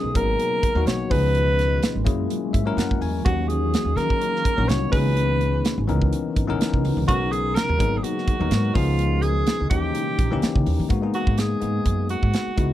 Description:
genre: electric jazz fusion.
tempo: 126 BPM.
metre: 4/4.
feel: swing 55% on 16ths.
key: G# minor.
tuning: A4 = 440 Hz.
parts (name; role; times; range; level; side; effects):
clear alto saxophone; melody; 0.0-12.7 s; E#4 to C#5; -25 LUFS; right 1 dB; slapback echo.
bell-like tine electric piano; accompaniment; 0.0-12.7 s; E3 to G#5; -27 LUFS; left 7 dB; none.
granular cloud pad; sustained chords; 0.0-10.9 s; B2 to A#4; -33 LUFS; right 1 dB; built-in reverb.
upright bass; bass; 0.0-12.7 s; G#1 to D#3; -24 LUFS; right 1 dB; none.
modern studio drum kit; drums; 0.2-12.7 s; hi-hat, kick drum, snare drum; -24 LUFS; right 1 dB; none.
room: little or no reverb.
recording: dry, close 1970s-style studio recording.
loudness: -19 LUFS.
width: side -13 dB against mid.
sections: 0.0-10.9 A section; 10.9-12.7 B section.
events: tine electric piano fill 2.3-3.3; alto saxophone solo 10.9-12.7.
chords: 0.1 G#m9; 1.1 C#9; 2.1 F#9; 3.3 D#m7; 4.9 C#m9; 7.1 Bmaj9; 7.8 G#m9; 8.8 C#9; 9.7 D#7b9; 10.9 G#m9.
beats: 0.39 0.87 | 1.35 1.82 2.30 2.78 | 3.26 3.74 4.21 4.69 | 5.17 5.65 6.13 6.60 | 7.08 7.56 8.04 8.52 | 8.99 9.47 9.95 10.43 | 10.90 11.38 11.86 12.34.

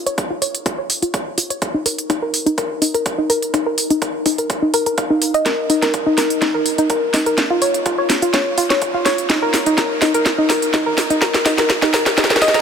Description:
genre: progressive house.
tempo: 125 BPM.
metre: 4/4.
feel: straight.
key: unclear.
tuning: A4 = 440 Hz.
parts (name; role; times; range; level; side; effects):
soft round pluck; arpeggios; 0.1-12.6 s; D#4 to A#5; -17 LUFS; equal; chorus, sidechain pumping, tape echo.
house drum kit; drums; 0.1-12.6 s; hi-hat, snare drum; -18 LUFS; equal; none.
electronic kick drum; drums; 0.2-12.3 s; none; -26 LUFS; equal; overdrive, high-pass filter on kick, high-pass filter on room.
room: moderate huge ambient reverb, RT60 7.3 s.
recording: dense, heavily limited modern master.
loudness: -15 LUFS.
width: side -7 dB against mid.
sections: 0.0-12.6 A section.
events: build-up 0.0-12.6; filter sweep on synth pluck 0.0-12.6; drum fill 5.5-12.6.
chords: none.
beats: 0.18 0.66 1.14 | 1.62 2.10 2.58 3.06 | 3.54 4.02 4.50 4.98 | 5.46 5.94 6.42 6.90 | 7.38 7.86 8.34 8.82 | 9.30 9.78 10.26 10.74 | 11.22 11.70 12.18.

